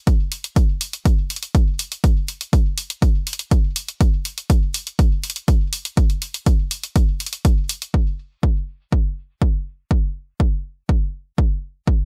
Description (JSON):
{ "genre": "techno", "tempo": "122 BPM", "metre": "4/4", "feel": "straight", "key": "none", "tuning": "none", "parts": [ { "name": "electronic hi-hat", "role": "drums", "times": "0.1-7.9 s", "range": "none", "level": "-28 LUFS", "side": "equal", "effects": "overdrive" }, { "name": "electronic kick drum", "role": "drums", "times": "0.1-12.0 s", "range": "none", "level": "-19 LUFS", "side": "equal", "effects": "overdrive" } ], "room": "digital ambience", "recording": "none", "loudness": "-21 LUFS", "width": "mono", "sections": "0.0-7.9 A section; 7.9-12.1 B section", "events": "none", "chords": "none" }